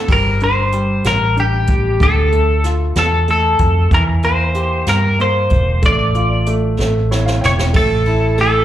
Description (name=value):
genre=six-eight pop ballad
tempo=63 BPM (dotted quarters)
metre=6/8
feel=straight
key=D minor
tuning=A4 = 440 Hz
part: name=twelve-string electric guitar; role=melody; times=0.0-8.6 s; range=G4 to D5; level=-16 LUFS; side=left 1 dB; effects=lush chorus, slapback echo, plate reverb
part: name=clear concert grand piano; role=accompaniment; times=0.0-8.6 s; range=D2 to G5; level=-22 LUFS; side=equal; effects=plate reverb, slapback echo
part: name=vintage muted fingered electric bass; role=bass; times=0.1-8.6 s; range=E1 to G2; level=-16 LUFS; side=equal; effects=none
part: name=jazz brush drum kit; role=drums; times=0.1-8.5 s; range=crash cymbal, hi-hat, kick drum, ride cymbal, snare drum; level=-19 LUFS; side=equal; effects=none
room=light reverb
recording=live gig heard through the venue's PA, club reverb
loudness=-12 LUFS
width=side -12 dB against mid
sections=0.1-7.7 A section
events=drum fill 6.8-7.7; grand piano fill 6.8-7.7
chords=0.1 G5; 2.0 Dm; 3.9 Edim; 5.8 Dm/A; 6.8 A; 7.7 A5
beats=| 0.09 1.05 | 2.01 2.96 | 3.92 4.88 | 5.83 6.79 | 7.74